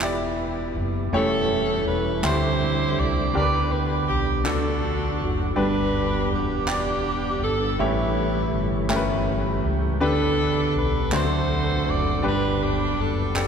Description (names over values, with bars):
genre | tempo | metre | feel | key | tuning
slow gospel | 54 BPM (dotted quarters) | 6/8 | straight | G major | A4 = 440 Hz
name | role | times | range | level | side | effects
clear saxophone section | melody | 0.0-13.5 s | B3 to D5 | -26 LUFS | right 1 dB | none
clear baby grand piano | accompaniment | 0.0-13.5 s | G2 to D5 | -26 LUFS | left 1 dB | none
mellow tonewheel organ | sustained chords | 0.0-13.5 s | E3 to G5 | -30 LUFS | right 2 dB | overdrive, chorus vibrato, stopped rotary speaker
fingered electric bass | bass | 0.0-13.5 s | E1 to D2 | -26 LUFS | equal | none
group handclap | percussion | 0.0-13.5 s | none | -36 LUFS | right 1 dB | none
room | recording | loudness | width
wet cathedral reverb, RT60 5.8 s | recorded in a church or concert hall | -21 LUFS | side -7 dB against mid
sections
0.0-13.5 A section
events
tonewheel organ fill 8.9-10.0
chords
0.0 Em; 1.1 A7/E; 2.2 D9sus4; 3.3 G/D; 4.5 D; 5.6 G; 7.8 A7; 10.0 G/D; 11.1 D7; 12.2 G